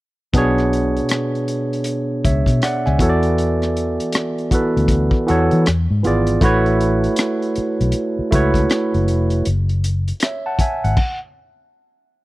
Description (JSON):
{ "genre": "R&B, neo-soul", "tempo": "79 BPM", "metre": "4/4", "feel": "swing 61% on 16ths", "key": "B dorian", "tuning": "A4 = 440 Hz", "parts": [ { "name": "barky tine electric piano", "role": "accompaniment", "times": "0.3-11.2 s", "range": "B2 to A5", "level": "-18 LUFS", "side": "right 1 dB", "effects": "overdrive" }, { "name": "vintage muted fingered electric bass", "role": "bass", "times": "0.3-11.0 s", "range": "E#1 to E3", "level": "-18 LUFS", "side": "left 1 dB", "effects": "none" }, { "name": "crunchy breakbeat drum kit", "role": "drums", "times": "0.3-11.2 s", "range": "crash cymbal, hi-hat, kick drum, rim click", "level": "-20 LUFS", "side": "left 1 dB", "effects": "none" } ], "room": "small room reverb", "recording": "dry, close 1970s-style studio recording", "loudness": "-15 LUFS", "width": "side -19 dB against mid", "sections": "0.3-12.2 A section", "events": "stop 11.0-12.2", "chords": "0.3 Bm69; 3.0 E7sus4; 5.7 E7b9; 6.4 A6; 9.4 F#sus2; 11.7 N.C." }